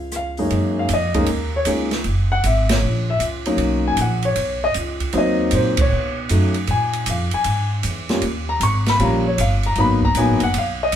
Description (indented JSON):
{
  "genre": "jazz piano trio",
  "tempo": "155 BPM",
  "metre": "4/4",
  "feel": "swing 66% on 8ths",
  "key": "F# major",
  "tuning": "A4 = 438 Hz",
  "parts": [
    { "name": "warm grand piano", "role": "melody", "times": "0.0-10.9 s", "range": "Gb2 to C#6", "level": "-20 LUFS", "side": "left 2 dB", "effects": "none" },
    { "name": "upright bass", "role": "bass", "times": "0.0-11.0 s", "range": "F#1 to B2", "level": "-21 LUFS", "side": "equal", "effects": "none" },
    { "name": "open jazz drum kit", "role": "drums", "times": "0.1-11.0 s", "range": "hi-hat, kick drum, ride cymbal, rim click, snare drum", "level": "-25 LUFS", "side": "right 3 dB", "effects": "none" }
  ],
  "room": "moderate studio reverb, RT60 0.9 s",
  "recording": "band playing live in one room",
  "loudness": "-17 LUFS",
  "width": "side -10 dB against mid",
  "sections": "0.5-11.0 A section",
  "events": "band accent 2.6, 5.7",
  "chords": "0.0 Db69; 0.5 F#69; 2.1 F#add9; 3.6 Bmaj7; 5.1 Cm7b5; 5.9 B9; 6.7 A#7(no3); 8.2 D#7; 9.8 G#m9"
}